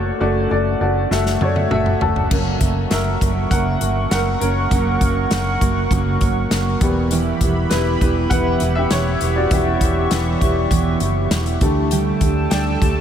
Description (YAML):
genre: piano-driven pop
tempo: 100 BPM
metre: 4/4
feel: straight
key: unclear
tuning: A4 = 440 Hz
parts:
  - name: clear upright piano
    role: accompaniment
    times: 0.0-13.0 s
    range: C#3 to A5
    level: -21 LUFS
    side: left 2 dB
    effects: lush chorus
  - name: vintage muted fingered electric bass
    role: bass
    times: 0.0-13.0 s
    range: E1 to F#2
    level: -22 LUFS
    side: equal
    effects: none
  - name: natural country drum kit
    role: drums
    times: 1.1-13.0 s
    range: crash cymbal, hi-hat, kick drum, snare drum, toms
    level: -21 LUFS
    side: equal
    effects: none
  - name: airy breathy pad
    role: sustained chords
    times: 2.3-13.0 s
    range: G4 to C#6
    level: -25 LUFS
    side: left 1 dB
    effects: chorus
  - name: fingerpicked steel-string acoustic guitar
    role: riff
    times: 2.3-13.0 s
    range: F#2 to G4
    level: -23 LUFS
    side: right 6 dB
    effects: none
room: moderate huge ambient reverb, RT60 8.1 s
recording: dreamy mix soaked in reverb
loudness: -16 LUFS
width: side -9 dB against mid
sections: 0.0-2.3 A section; 2.3-13.0 B section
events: upright piano fill 1.1-2.3; drum fill 1.1-2.3; upright piano solo 2.3-13.0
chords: 0.0 D/F#; 1.1 F#m7; 2.3 F#; 6.8 Em; 11.6 Gsus2/D